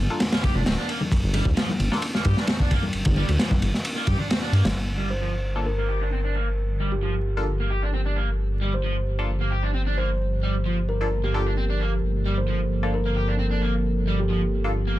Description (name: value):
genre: breakbeat, breaks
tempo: 132 BPM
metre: 4/4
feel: straight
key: G minor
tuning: A4 = 439 Hz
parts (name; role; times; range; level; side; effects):
- dark detuned saw bass; bass; 0.0-15.0 s; D1 to G2; -24 LUFS; equal; none
- band-passed chord stab; stabs; 0.1-2.0, 5.6-14.7 s; Bb3 to A4; -34 LUFS; left 2 dB; phaser, cassette tape, dub echo
- crunchy breakbeat drum kit; drums; 0.2-4.8 s; kick drum, ride cymbal, snare drum; -24 LUFS; equal; none
- crunchy overdriven guitar; riff; 0.3-15.0 s; F3 to G4; -31 LUFS; right 2 dB; low-pass filter, dub echo
- congas; percussion; 0.4-4.7 s; none; -31 LUFS; left 2 dB; none
- warbly tape-like pad; sustained chords; 6.4-15.0 s; F3 to A4; -32 LUFS; right 2 dB; chorus, built-in reverb, sidechain pumping
- kalimba; melody; 5.1-14.4 s; G4 to C5; -32 LUFS; left 1 dB; AM radio sound, dub echo
room: little or no reverb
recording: vinyl crackle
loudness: -22 LUFS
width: side -15 dB against mid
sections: 0.0-4.8 A section; 4.8-15.0 B section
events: filter sweep on synth stab 0.0-4.8; filter sweep on ambient pad 4.8-15.0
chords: 0.0 Gm7; 4.8 Gm9